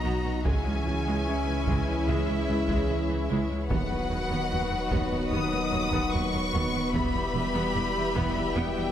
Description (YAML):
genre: cinematic, hybrid orchestral and electronic film score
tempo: 74 BPM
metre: 4/4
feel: straight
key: unclear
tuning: A4 = 440 Hz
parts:
  - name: warm symphonic violin section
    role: melody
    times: 0.0-8.9 s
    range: Fb5 to D#6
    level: -33 LUFS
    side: left 4 dB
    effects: none
  - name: rich chamber violin section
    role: second line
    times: 0.0-8.9 s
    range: Fb4 to F#5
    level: -36 LUFS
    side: left 1 dB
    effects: none
  - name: clear symphonic viola section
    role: accompaniment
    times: 0.0-8.9 s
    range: Fb3 to G4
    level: -36 LUFS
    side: right 1 dB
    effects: none
  - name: mellow French horn section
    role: sustained chords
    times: 0.0-8.9 s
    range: Ab3 to Fb4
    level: -35 LUFS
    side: left 5 dB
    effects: none
  - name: mellow trombone section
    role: sustained chords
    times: 0.0-8.9 s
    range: B2 to G3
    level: -36 LUFS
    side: right 3 dB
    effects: none
  - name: warm analog pad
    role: sustained chords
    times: 0.0-8.9 s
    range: Fb3 to E5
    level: -35 LUFS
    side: equal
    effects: chorus
  - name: rich symphonic cello section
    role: bass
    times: 0.0-8.8 s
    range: Db2 to B2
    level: -34 LUFS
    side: right 2 dB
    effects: none
  - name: rich symphonic double bass section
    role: bass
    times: 0.0-8.6 s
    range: E1 to D#2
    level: -34 LUFS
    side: right 3 dB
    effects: none
  - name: saturated sub bass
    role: bass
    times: 0.0-8.9 s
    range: D#1 to Db2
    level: -34 LUFS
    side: equal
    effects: none
  - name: taiko ensemble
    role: drums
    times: 0.5-8.9 s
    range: none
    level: -33 LUFS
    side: equal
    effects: none
room: moderate scoring stage reverb, RT60 2.0 s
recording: none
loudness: -25 LUFS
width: side -10 dB against mid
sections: 0.0-8.9 A section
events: none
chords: 0.5 Dbm; 3.7 B/D#; 6.9 Em